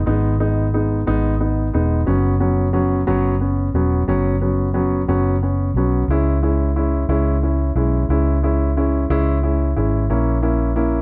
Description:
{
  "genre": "six-eight pop ballad",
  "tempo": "60 BPM (dotted quarters)",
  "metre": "6/8",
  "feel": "straight",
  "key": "unclear",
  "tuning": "A4 = 441 Hz",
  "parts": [
    { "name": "vintage muted fingered electric bass", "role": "bass", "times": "0.0-11.0 s", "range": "E1 to C#2", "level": "-21 LUFS", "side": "equal", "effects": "none" },
    { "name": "warm grand piano", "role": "accompaniment", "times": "0.1-11.0 s", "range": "F#3 to E4", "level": "-22 LUFS", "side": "equal", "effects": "none" }
  ],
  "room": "light reverb, small room ambience",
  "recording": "dark, warm production",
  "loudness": "-19 LUFS",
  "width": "mono",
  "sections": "0.0-11.0 A section",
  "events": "none",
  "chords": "0.0 G#m; 2.1 F#sus4; 6.1 C#m; 10.1 A#dim"
}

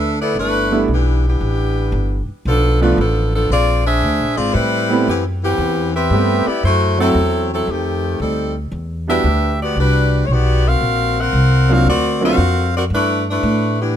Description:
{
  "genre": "jazz, big band swing",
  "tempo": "115 BPM",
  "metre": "4/4",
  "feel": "swing 67% on 8ths",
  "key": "G major",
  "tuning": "A4 = 440 Hz",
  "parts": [
    { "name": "warm saxophone section", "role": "melody", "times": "0.0-14.0 s", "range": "Eb3 to F#5", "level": "-17 LUFS", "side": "left 1 dB", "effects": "none" },
    { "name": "upright bass", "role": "bass", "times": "0.0-13.9 s", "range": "G1 to A2", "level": "-18 LUFS", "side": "equal", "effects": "none" },
    { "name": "clear concert grand piano", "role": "accompaniment", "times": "0.7-12.4 s", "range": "F3 to G4", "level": "-19 LUFS", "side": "right 3 dB", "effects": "none" }
  ],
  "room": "light reverb",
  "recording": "none",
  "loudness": "-14 LUFS",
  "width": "side -10 dB against mid",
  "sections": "0.4-14.0 A section",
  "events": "none",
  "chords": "0.4 G69; 2.5 Bm7b5; 3.5 Bb9; 4.5 Am9; 6.6 F#m7b5; 7.7 F9; 8.7 Em9; 10.8 D7alt; 12.9 G69"
}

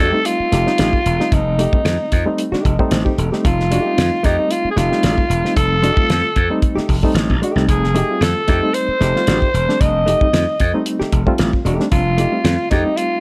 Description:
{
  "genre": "funk",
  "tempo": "113 BPM",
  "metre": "4/4",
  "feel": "straight",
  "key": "F mixolydian",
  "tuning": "A4 = 438 Hz",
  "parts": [
    { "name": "growling alto saxophone", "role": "melody", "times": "0.0-13.2 s", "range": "Eb4 to Eb5", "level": "-21 LUFS", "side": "equal", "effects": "none" },
    { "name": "hollow-body jazz guitar", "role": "accompaniment", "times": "0.0-12.9 s", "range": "A3 to A4", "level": "-25 LUFS", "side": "equal", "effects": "none" },
    { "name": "slap bass", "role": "bass", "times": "0.0-12.8 s", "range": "E1 to F2", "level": "-21 LUFS", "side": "equal", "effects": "none" },
    { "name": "damped 70s drum kit", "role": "drums", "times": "0.0-13.1 s", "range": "hi-hat, kick drum, snare drum", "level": "-21 LUFS", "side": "equal", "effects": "none" },
    { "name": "bright reed electric piano", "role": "stabs", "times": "0.1-13.2 s", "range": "G3 to Eb5", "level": "-24 LUFS", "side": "equal", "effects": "fast tremolo" }
  ],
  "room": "small room ambience",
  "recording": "none",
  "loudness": "-17 LUFS",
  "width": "mono",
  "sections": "0.0-13.2 A section",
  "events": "reed electric piano fill 2.4-3.4",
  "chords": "0.0 F9"
}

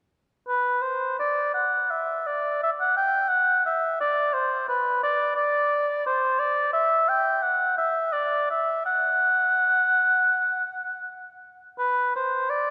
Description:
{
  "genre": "classical, baroque-style fantasia for unaccompanied oboe",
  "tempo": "81-88 BPM",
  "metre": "4/4",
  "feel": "rubato",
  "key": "unclear",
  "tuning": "A4 = 440 Hz",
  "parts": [
    { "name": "mellow oboe", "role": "solo", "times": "0.5-12.7 s", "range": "B4 to G5", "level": "-24 LUFS", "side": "equal", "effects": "none" }
  ],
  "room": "wet church reverb, RT60 3.5 s",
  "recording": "none",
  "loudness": "-24 LUFS",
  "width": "mono",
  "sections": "0.5-12.7 A section",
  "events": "none",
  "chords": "none"
}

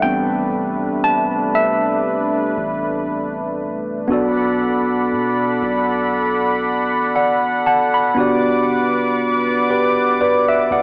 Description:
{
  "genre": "R&B",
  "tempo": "59 BPM",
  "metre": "4/4",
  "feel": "swing 54% on 16ths",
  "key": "unclear",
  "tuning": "A4 = 438 Hz",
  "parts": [
    { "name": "mellow tine electric piano", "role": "accompaniment", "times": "0.0-10.8 s", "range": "G3 to B5", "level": "-20 LUFS", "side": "equal", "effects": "overdrive" },
    { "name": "warm analog pad", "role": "sustained chords", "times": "0.0-10.8 s", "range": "C3 to D6", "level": "-22 LUFS", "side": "equal", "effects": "chorus" },
    { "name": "soft 808-style bass", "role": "bass", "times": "0.0-10.8 s", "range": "G1 to B2", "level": "-38 LUFS", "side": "equal", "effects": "none" }
  ],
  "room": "moderate lush hall reverb, RT60 2.5 s",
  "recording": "worn, warbling old tape, cassette tape, warbly pitch drift, small speaker sound",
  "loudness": "-18 LUFS",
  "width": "mono",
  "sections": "0.0-4.1 A section; 4.1-10.8 B section",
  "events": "tine electric piano solo 0.0-4.1",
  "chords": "0.0 Am11; 4.1 Bm7; 8.2 Gmaj7"
}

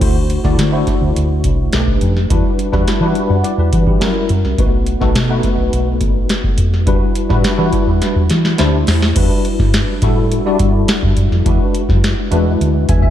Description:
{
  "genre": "polished 1980s jazz-funk pop",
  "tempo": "105 BPM",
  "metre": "4/4",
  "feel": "straight",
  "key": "E minor",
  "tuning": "A4 = 441 Hz",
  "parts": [
    { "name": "tine electric piano", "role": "accompaniment", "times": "0.0-13.1 s", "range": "G3 to G#5", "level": "-17 LUFS", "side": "left 1 dB", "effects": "overdrive, fast stereo tremolo, ensemble chorus" },
    { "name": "fingered electric bass", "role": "bass", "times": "0.0-13.1 s", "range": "A1 to F#3", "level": "-16 LUFS", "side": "equal", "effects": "none" },
    { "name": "booming analog drum machine", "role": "drums", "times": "0.0-13.1 s", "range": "crash cymbal, hi-hat, kick drum, snare drum", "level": "-16 LUFS", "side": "equal", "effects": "none" }
  ],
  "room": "digital ambience",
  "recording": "dark, warm production",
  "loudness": "-12 LUFS",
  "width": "side -11 dB against mid",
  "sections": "0.0-9.2 A section; 9.2-13.1 B section",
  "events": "drum fill 8.0-9.2",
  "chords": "0.0 D7; 1.7 B7alt; 2.3 Em9; 4.0 F#7b9; 4.6 B7; 6.9 Em9; 8.6 D7sus4; 9.2 Em7; 11.5 E7"
}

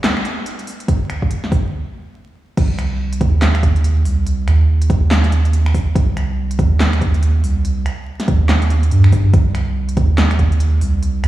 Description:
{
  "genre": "deep dubstep",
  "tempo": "142 BPM",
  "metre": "4/4",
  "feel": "swing 61% on 16ths, half-time",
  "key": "C minor",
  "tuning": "A4 = 440 Hz",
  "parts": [
    { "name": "deep house drum kit", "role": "drums", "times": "0.0-11.3 s", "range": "crash cymbal, finger snaps, handclaps, hi-hat, snare drum", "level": "-22 LUFS", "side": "equal", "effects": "none" },
    { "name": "electronic kick drum", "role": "drums", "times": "0.9-10.5 s", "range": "none", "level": "-16 LUFS", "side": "equal", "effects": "overdrive" },
    { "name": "soft dub sub bass", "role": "bass", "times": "2.6-11.3 s", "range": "C2 to G2", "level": "-14 LUFS", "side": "right 1 dB", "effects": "none" }
  ],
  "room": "light reverb",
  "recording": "played on a big sound system in a bare room, large studio reverb, vinyl crackle, small room ambience",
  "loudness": "-13 LUFS",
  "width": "side -15 dB against mid",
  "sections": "0.0-2.6 A section; 2.6-11.3 B section",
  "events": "build-up 0.0-2.6; stop 1.7-2.6; drop 2.6-11.3",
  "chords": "none"
}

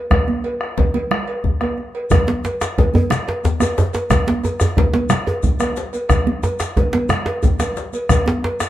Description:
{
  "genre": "west african traditional, West African drum ensemble",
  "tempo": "120 BPM (dotted quarters)",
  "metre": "12/8",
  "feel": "straight",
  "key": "none",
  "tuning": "none",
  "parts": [
    { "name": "bombo", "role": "percussion", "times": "0.1-8.7 s", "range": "none", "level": "-20 LUFS", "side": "equal", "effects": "none" },
    { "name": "congas", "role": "percussion", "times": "0.1-8.7 s", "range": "none", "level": "-23 LUFS", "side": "right 3 dB", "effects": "none" },
    { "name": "cowbell", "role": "percussion", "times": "0.1-8.6 s", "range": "none", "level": "-24 LUFS", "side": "right 1 dB", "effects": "none" },
    { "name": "djembe", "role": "percussion", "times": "0.1-8.7 s", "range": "none", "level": "-21 LUFS", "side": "left 3 dB", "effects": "none" },
    { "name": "djembe", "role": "percussion", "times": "2.1-8.7 s", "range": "none", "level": "-20 LUFS", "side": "right 1 dB", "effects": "none" },
    { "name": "shekere", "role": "percussion", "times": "2.1-8.7 s", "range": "none", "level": "-26 LUFS", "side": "left 4 dB", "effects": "none" }
  ],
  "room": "moderate studio reverb, RT60 0.5 s",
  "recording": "none",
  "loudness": "-16 LUFS",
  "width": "side -13 dB against mid",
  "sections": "0.0-2.1 A section; 2.1-8.7 B section",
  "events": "none",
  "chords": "none"
}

